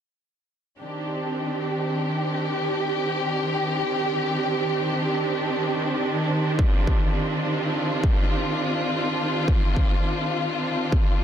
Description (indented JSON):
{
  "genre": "half-time drum and bass",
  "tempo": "free time",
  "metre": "none",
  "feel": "none",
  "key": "C minor",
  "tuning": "A4 = 440 Hz",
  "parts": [
    { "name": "warm studio string section", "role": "sustained chords", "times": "0.8-11.2 s", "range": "Eb3 to G4", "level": "-24 LUFS", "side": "left 1 dB", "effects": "sidechain pumping" },
    { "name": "pulsing gated texture", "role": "texture", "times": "1.0-11.2 s", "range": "G4", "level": "-31 LUFS", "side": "right 11 dB", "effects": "chorus, built-in reverb" },
    { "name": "electronic kick drum", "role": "drums", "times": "6.6-11.0 s", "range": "none", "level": "-21 LUFS", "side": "equal", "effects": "distortion" }
  ],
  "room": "moderate echo chamber reverb, RT60 1.7 s, digital ambience",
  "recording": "dense, heavily limited modern master",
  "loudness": "-22 LUFS",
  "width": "side -9 dB against mid",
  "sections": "0.8-11.2 A section",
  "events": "none",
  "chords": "0.8 Cmadd9",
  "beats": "free time"
}